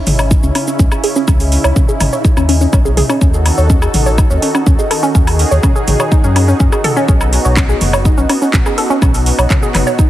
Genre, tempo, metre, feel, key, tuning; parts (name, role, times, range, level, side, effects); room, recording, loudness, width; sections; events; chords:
melodic techno; 124 BPM; 4/4; straight; A4 = 440 Hz
lush unison pad; sustained chords; 0.0-10.1 s; C#3 to A4; -19 LUFS; equal; chorus, sidechain pumping
analog pluck; arpeggios; 0.0-10.1 s; C#4 to C#5; -17 LUFS; equal; chorus, sidechain pumping, dub echo
round analog bass; bass; 0.1-9.8 s; F#1 to F#2; -14 LUFS; equal; sidechain pumping
house drum kit; drums; 0.1-10.1 s; handclaps, hi-hat, shaker, toms, woodblock; -19 LUFS; equal
electronic kick drum; drums; 0.3-10.1 s; -12 LUFS; equal
light reverb; heavily compressed radio sound; -10 LUFS; side -14 dB against mid
0.0-10.1 A section
filter sweep on synth arpeggio sound 0.0-10.1
0.0 C#madd9; 3.2 D#dim; 7.1 B